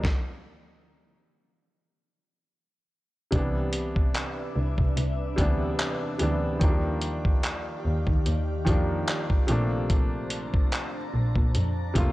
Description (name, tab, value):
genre	contemporary R&B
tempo	73 BPM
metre	4/4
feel	swing 54% on 16ths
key	unclear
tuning	A4 = 440 Hz
part	felt-muted upright piano	accompaniment	0.0-12.1 s	C3 to F4	-30 LUFS	equal	none
part	dusty soul sampler-style drum kit	drums	0.0-12.1 s	handclaps, hi-hat, kick drum, snare drum	-25 LUFS	equal	none
part	glassy FM pad	sustained chords	3.9-12.1 s	Eb3 to Bb5	-36 LUFS	left 1 dB	ensemble chorus, built-in reverb
part	rich double bass	bass	3.3-12.1 s	F1 to Eb3	-28 LUFS	equal	none
room	little or no reverb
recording	dry, gritty hardware recording, cassette tape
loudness	-24 LUFS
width	side -18 dB against mid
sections	0.0-3.3 A section; 3.3-12.1 B section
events	stop 0.0-3.3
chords	0.0 N.C.; 3.3 Cmaj9; 6.6 Ebmaj9; 9.5 Bbmaj9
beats	| 0.04 0.86 1.68 2.50 | 3.33 4.15 4.97 5.79 | 6.61 7.43 8.26 9.08 | 9.90 10.72 11.54